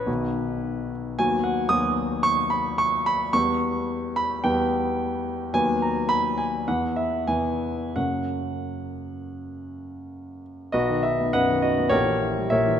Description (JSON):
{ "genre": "classical, romantic character piece for solo piano", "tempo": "83-114 BPM", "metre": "4/4", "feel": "rubato", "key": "B major", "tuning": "A4 = 436 Hz", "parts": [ { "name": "warm grand piano", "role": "solo", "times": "0.0-12.8 s", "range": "A#1 to D#6", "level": "-22 LUFS", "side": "equal", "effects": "none" } ], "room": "moderate concert hall reverb, RT60 2.4 s", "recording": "none", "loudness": "-22 LUFS", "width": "side -9 dB against mid", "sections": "0.0-10.7 A section; 10.7-12.8 B section", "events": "none", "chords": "0.1 B; 1.2 B/D#; 3.4 Em; 5.5 B/D#; 6.7 E; 8.0 F#; 10.7 B; 11.9 A#dim7" }